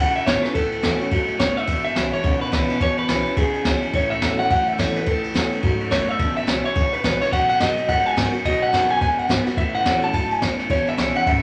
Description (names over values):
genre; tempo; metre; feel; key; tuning
rockabilly; 213 BPM; 4/4; swing 60% on 8ths; E major; A4 = 441 Hz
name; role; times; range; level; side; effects
electric guitar through a small old amp; melody; 0.0-11.4 s; G#4 to A5; -25 LUFS; equal; none
picked steel-string acoustic guitar; accompaniment; 0.0-11.4 s; E2 to F#4; -31 LUFS; equal; none
electric guitar through a small old amp; riff; 0.0-11.4 s; E2 to G#3; -31 LUFS; equal; phaser
upright bass; bass; 0.0-11.4 s; E1 to A2; -32 LUFS; equal; none
jazz brush drum kit; drums; 0.2-11.3 s; kick drum, ride cymbal, snare drum; -24 LUFS; equal; none
room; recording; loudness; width
moderate large studio reverb, RT60 0.8 s; none; -21 LUFS; mono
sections
0.0-11.4 A section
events
none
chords
0.0 E6; 0.6 A6; 1.7 E6; 3.9 A6; 6.2 E6; 7.3 B6; 9.6 A6; 10.7 E6